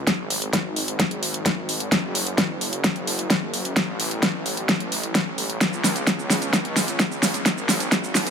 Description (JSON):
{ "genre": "EDM, festival progressive house", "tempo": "130 BPM", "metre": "4/4", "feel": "straight", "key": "unclear", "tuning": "A4 = 440 Hz", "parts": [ { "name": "wide detuned saw bass", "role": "bass", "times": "0.0-8.3 s", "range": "F#1 to C#2", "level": "-29 LUFS", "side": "equal", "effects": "chorus, sidechain pumping, high-pass filter" }, { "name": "electronic kick drum", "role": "drums", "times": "0.1-8.0 s", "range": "none", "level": "-27 LUFS", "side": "equal", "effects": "high-pass filter on kick" }, { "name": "pop drum kit", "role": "drums", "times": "0.1-8.3 s", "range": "hi-hat, shaker, snare drum", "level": "-21 LUFS", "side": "equal", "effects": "overdrive" } ], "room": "light reverb", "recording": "high-pass filter", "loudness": "-20 LUFS", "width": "side -7 dB against mid", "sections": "0.0-8.3 A section", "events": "build-up 0.0-8.3; drum fill 0.0-8.3", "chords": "none", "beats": "| 0.07 0.54 1.00 1.46 | 1.92 2.38 2.84 3.30 | 3.77 4.23 4.69 5.15 | 5.61 6.07 6.54 7.00 | 7.46 7.92" }